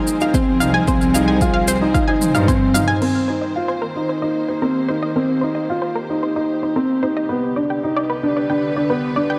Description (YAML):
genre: piano and strings electronica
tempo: 112 BPM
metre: 4/4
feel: straight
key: C minor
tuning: A4 = 440 Hz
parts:
  - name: warm studio string section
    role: sustained chords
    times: 0.0-9.4 s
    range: C2 to C5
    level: -28 LUFS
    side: equal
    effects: sidechain pumping
  - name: dark upright piano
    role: riff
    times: 0.0-9.4 s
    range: B3 to F4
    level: -21 LUFS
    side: equal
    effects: delay
  - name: warm symphonic cello section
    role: bass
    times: 0.0-2.8 s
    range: C2 to G2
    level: -24 LUFS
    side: equal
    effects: sidechain pumping
  - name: deep house drum kit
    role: drums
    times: 0.1-3.1 s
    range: crash cymbal, shaker, toms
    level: -28 LUFS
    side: equal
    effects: overdrive
  - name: analog pluck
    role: arpeggios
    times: 0.2-9.3 s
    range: Bb4 to Ab5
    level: -27 LUFS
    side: equal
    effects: chorus, vintage 12-bit sampler grit, sidechain pumping, delay
  - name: electronic kick drum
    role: drums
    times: 0.3-2.6 s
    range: none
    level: -23 LUFS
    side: equal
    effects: overdrive
room: moderate lush hall reverb, RT60 1.8 s, small room ambience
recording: none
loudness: -19 LUFS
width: mono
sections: 0.0-3.0 A section; 3.0-9.4 B section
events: none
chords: 0.0 Fm/C; 3.0 Cm7; 7.3 G/C